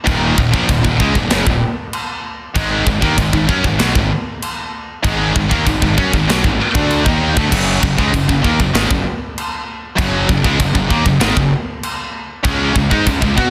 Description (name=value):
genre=heavy metal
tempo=97 BPM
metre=4/4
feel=straight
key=unclear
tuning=A4 = 441 Hz
part: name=tight distorted guitar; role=riff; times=0.0-13.5 s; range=Eb2 to Gb4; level=-23 LUFS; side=equal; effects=distortion
part: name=heavy high-gain guitar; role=riff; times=0.1-13.5 s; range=Eb2 to Gb4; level=-22 LUFS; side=equal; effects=distortion
part: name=scooped high-gain guitar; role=riff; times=0.1-13.5 s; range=Eb2 to Gb4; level=-24 LUFS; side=equal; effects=none
part: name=fuzz fingered electric bass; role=bass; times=0.1-13.5 s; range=Eb1 to Cb3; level=-22 LUFS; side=equal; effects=overdrive
part: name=tight metal drum kit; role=drums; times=0.1-13.5 s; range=china cymbal, crash cymbal, kick drum, snare drum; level=-20 LUFS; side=equal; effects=none
room=little or no reverb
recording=dense, heavily limited modern master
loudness=-16 LUFS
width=mono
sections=0.0-13.5 A section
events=none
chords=0.0 Ebm; 2.6 Ab5; 7.5 Gb5; 12.5 Db5